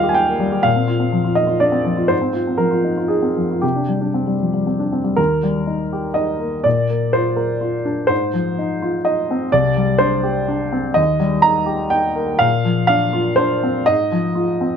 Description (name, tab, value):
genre	neoclassical minimalist piano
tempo	123 BPM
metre	3/4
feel	rubato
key	Eb major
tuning	A4 = 440 Hz
part	warm baby grand piano	solo	0.0-14.8 s	C2 to Bb5	-16 LUFS	equal	none
room	light reverb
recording	close, detailed microphones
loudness	-16 LUFS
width	side -7 dB against mid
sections	0.0-5.2 A section; 5.2-14.8 B section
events	none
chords	0.0 Eb; 0.7 Bbadd9; 2.1 Fm7/Ab; 3.6 Csus2; 5.2 Eb; 6.7 Bbadd9; 8.1 Fm7/Ab; 9.5 Csus2; 11.0 Eb; 12.4 Bbadd9; 13.9 Fm7/Ab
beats	0.17 | 0.66 1.15 1.63 | 2.12 2.61 3.11 | 3.62 4.15 4.67 | 5.18 5.68 6.17 | 6.65 7.14 7.62 | 8.10 8.58 9.06 | 9.53 10.01 10.49 | 10.97 11.46 11.94 | 12.43 12.91 13.40 | 13.89 14.38